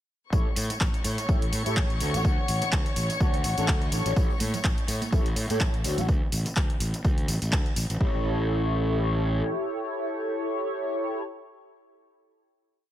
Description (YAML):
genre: filtered disco house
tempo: 125 BPM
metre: 4/4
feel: swing 56% on 16ths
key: A mixolydian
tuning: A4 = 439 Hz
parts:
  - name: mellow synth brass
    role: accompaniment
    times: 0.3-11.2 s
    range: D4 to C#5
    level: -31 LUFS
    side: equal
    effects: chorus, phaser, sidechain pumping
  - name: dark studio violin section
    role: sustained chords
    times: 0.3-6.1 s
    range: C#5 to C#6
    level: -34 LUFS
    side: left 2 dB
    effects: sidechain pumping
  - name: fuzz fingered electric bass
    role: bass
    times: 0.3-9.4 s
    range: A1 to A2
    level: -28 LUFS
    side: equal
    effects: overdrive, sidechain pumping
  - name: electronic kick drum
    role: drums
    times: 0.3-8.1 s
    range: none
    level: -26 LUFS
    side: equal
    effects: overdrive, studio reverb
  - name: punchy analog drum machine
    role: drums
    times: 0.3-8.0 s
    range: handclaps, hi-hat, tambourine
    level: -32 LUFS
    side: equal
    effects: overdrive, sidechain pumping on perc, studio reverb, sidechain pumping on hats
  - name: mellow hollow baroque flute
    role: melody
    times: 2.1-6.1 s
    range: F#5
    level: -36 LUFS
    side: left 5 dB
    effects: vintage 12-bit sampler grit, sidechain pumping, dub echo
  - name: tambourine and congas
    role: percussion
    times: 4.2-6.1 s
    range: none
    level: -37 LUFS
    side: right 5 dB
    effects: sidechain pumping on perc
room: studio reverb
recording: none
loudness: -24 LUFS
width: side -12 dB against mid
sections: 0.3-8.0 drop; 8.0-11.8 final chord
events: drop 0.3-8.0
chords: 0.3 A7; 2.0 Dmaj7; 4.2 A7; 5.8 Dmaj7(no3); 8.0 A7